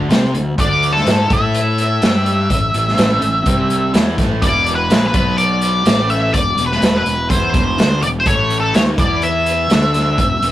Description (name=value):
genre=blues rock power trio and southern rock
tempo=125 BPM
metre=4/4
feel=straight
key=unclear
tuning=A4 = 440 Hz
part: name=overdriven semi-hollow guitar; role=riff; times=0.0-10.5 s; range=E2 to C5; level=-23 LUFS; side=left 1 dB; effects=none
part: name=fuzz fingered electric bass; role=bass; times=0.0-10.5 s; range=E1 to C3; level=-20 LUFS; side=equal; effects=overdrive
part: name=raw garage drum kit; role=drums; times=0.1-10.5 s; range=hi-hat, kick drum, snare drum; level=-17 LUFS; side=equal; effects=none
part: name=octave-fuzz lead guitar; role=melody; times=0.6-10.5 s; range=A4 to E5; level=-17 LUFS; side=left 1 dB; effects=wah, distortion
room=light reverb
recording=rough rehearsal-room recording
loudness=-13 LUFS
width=side -14 dB against mid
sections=0.0-10.5 A section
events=none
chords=0.0 D5; 1.3 A5; 2.0 G5; 2.5 A5; 3.5 C5; 3.9 A5; 4.4 E5; 5.1 B5; 5.9 A5; 6.3 E5; 8.3 A; 9.0 E5; 9.7 D5